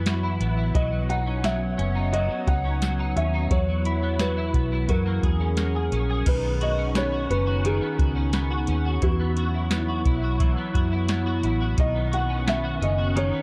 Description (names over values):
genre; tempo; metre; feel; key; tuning
dream pop; 87 BPM; 4/4; straight; B major; A4 = 440 Hz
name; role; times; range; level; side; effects
warbly tape-like pad; sustained chords; 0.0-13.4 s; D#3 to B5; -33 LUFS; equal; chorus, built-in reverb
twelve-string electric guitar; arpeggios; 0.0-13.4 s; D#3 to G#4; -32 LUFS; equal; ensemble chorus, digital delay
vintage muted fingered electric bass; bass; 0.0-13.3 s; F#1 to F#2; -28 LUFS; equal; none
unison pluck; texture; 0.0-0.2, 6.6-10.5 s; B4 to C#5; -48 LUFS; equal; none
soft vintage rhythm box; drums; 0.1-13.3 s; crash cymbal, hi-hat, kick drum, snare drum, tambourine; -27 LUFS; equal; none
felt-muted upright piano; melody; 0.7-13.4 s; F#4 to F#5; -32 LUFS; equal; digital delay
room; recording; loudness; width
light reverb; dark, warm production; -24 LUFS; mono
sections
0.0-6.3 A section; 6.3-13.4 A section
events
none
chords
0.0 Esus2; 0.7 Badd9; 3.5 Esus2; 4.9 F#add9; 6.3 Badd9; 9.0 Esus2; 11.8 Badd9